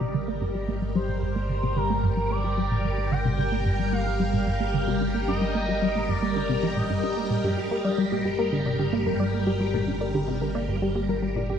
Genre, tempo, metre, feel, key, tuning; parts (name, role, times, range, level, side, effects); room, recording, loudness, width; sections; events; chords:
ambient, sequencer-driven space music; 111 BPM; 4/4; straight; G minor; A4 = 441 Hz
expressive synth lead; melody; 0.0-7.4 s; Bb4 to G5; -32 LUFS; right 1 dB; analog chorus, tape echo
phased string machine; sustained chords; 0.0-11.6 s; G3 to Bb4; -29 LUFS; left 1 dB; ensemble chorus, phaser
resonant blip pluck; riff; 0.0-11.5 s; G2 to D4; -28 LUFS; equal; chorus, phaser, tape echo
analog drone; bass; 0.0-11.6 s; G1; -30 LUFS; equal; chorus, tube saturation
soft round pluck; arpeggios; 7.4-11.6 s; G4 to D5; -30 LUFS; left 1 dB; chorus, auto-pan, tape echo
wet concert hall reverb, RT60 2.1 s; -23 LUFS; side -8 dB against mid
0.0-11.6 A section
filter sweep on synth arpeggio sound 0.0-11.6; fade-out 10.3-11.6
0.0 Gm